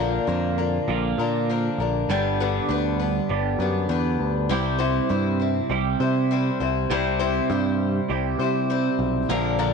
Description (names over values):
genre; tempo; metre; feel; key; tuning
folk rock and heartland rock; 100 BPM; 4/4; straight; unclear; A4 = 439 Hz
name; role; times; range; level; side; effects
picked acoustic archtop guitar; accompaniment; 0.0-9.7 s; G2 to C5; -25 LUFS; left 10 dB; none
twelve-string electric guitar; riff; 0.0-9.7 s; G2 to Bb4; -25 LUFS; right 10 dB; phaser
picked electric bass; bass; 0.0-9.7 s; G1 to C3; -26 LUFS; left 1 dB; none
room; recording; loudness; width
moderate echo chamber reverb, RT60 1.7 s, studio reverb; 1960s-style stereo with parts hard left and right, nothing above 10.4 kHz; -21 LUFS; side -5 dB against mid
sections
0.0-4.5 A section; 4.5-9.7 A section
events
none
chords
0.0 Bb; 2.1 G; 4.5 C